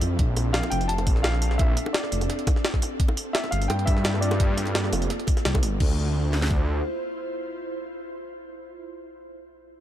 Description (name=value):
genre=liquid drum and bass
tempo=171 BPM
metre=4/4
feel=straight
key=D minor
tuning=A4 = 440 Hz
part: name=ethereal airy pad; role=sustained chords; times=0.0-8.9 s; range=Bb3 to C5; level=-33 LUFS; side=right 1 dB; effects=ensemble chorus, built-in reverb, sidechain pumping
part: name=swelling detuned saw bass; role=bass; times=0.0-6.8 s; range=F1 to G2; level=-24 LUFS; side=equal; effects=none
part: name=jungle sampler-style drum kit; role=drums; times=0.0-5.9 s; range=crash cymbal, hi-hat, snare drum, tambourine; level=-30 LUFS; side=equal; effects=none
part: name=drum and bass drum kit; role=drums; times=0.2-6.6 s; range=kick drum, snare drum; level=-23 LUFS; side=equal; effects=none
part: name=bongos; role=percussion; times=0.4-5.6 s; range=none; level=-36 LUFS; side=equal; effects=none
part: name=dark baby grand piano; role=melody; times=0.5-5.4 s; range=D5 to A5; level=-32 LUFS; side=left 1 dB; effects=digital delay
room=little or no reverb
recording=dark, warm production, faint mains hum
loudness=-22 LUFS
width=side -12 dB against mid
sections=0.0-5.8 A section; 5.8-8.6 B section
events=drop 0.0-5.8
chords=0.2 Bbmaj7; 3.0 Gm11; 5.8 Dm9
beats=| 0.19 0.54 0.89 1.24 | 1.59 1.94 2.29 2.65 | 3.00 3.35 3.70 4.05 | 4.40 4.75 5.10 5.45 | 5.80 6.16 6.51 6.86 | 7.21 7.56 7.91 8.26